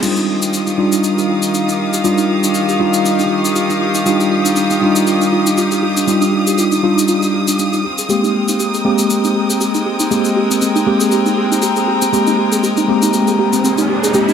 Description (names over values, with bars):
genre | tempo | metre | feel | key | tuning
deep house | 119 BPM | 4/4 | swing 56% on 16ths | Eb major | A4 = 440 Hz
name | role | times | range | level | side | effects
soft round pluck | arpeggios | 0.0-14.3 s | C4 to Ab4 | -21 LUFS | right 3 dB | chorus, dub echo
mellow tine electric piano | stabs | 0.0-14.3 s | G3 to G4 | -15 LUFS | equal | medium stereo tremolo, low-pass filter, dub echo
tube shaker | percussion | 0.0-14.3 s | none | -23 LUFS | left 3 dB | none
rich studio violin section | texture | 0.0-14.3 s | Eb6 | -24 LUFS | right 2 dB | none
warm studio string section | texture | 0.0-14.3 s | Eb3 to G5 | -21 LUFS | left 3 dB | none
riser | sound effects | 12.7-14.3 s | none | -22 LUFS | right 3 dB | none
room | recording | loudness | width
moderate lush hall reverb, RT60 2.3 s | none | -12 LUFS | side -8 dB against mid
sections
0.0-14.3 A section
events
riser 12.7-14.3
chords
0.0 Ebmaj9; 7.8 Abmaj9